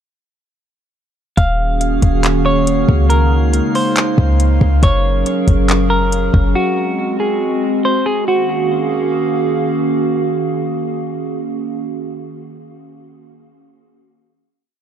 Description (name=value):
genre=hip hop, atmospheric cloud-rap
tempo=139 BPM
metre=4/4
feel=half-time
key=Eb dorian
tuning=A4 = 440 Hz
part: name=semi-hollow electric guitar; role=melody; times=1.4-9.5 s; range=Gb4 to F5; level=-20 LUFS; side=equal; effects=low-pass filter, digital delay
part: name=warbly tape-like pad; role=sustained chords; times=1.6-11.9 s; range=Db3 to F5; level=-18 LUFS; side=right 2 dB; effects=chorus, built-in reverb, sidechain pumping
part: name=clean 808-style bass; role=bass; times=1.4-6.5 s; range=Eb1 to Db2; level=-15 LUFS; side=equal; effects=none
part: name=smooth R&B drum kit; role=drums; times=1.4-6.4 s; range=handclaps, hi-hat, kick drum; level=-16 LUFS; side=equal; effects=none
part: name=drifting glass-harmonics texture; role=texture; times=1.7-4.8 s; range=Db4 to F5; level=-30 LUFS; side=right 2 dB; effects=chorus, built-in reverb
room=little or no reverb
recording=dark, warm production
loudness=-13 LUFS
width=side -9 dB against mid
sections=1.4-8.3 verse; 8.3-11.7 final chord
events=none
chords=1.4 Ebm11; 3.1 Db6; 4.8 Gbmaj7; 6.6 Ab7; 8.3 Ebm11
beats=| 1.38 1.81 2.24 2.67 | 3.10 3.53 3.96 4.40 | 4.83 5.26 5.69 6.12 | 6.55 6.99 7.42 7.85 | 8.28 8.71 9.14 9.58 | 10.01 10.44 10.87 11.30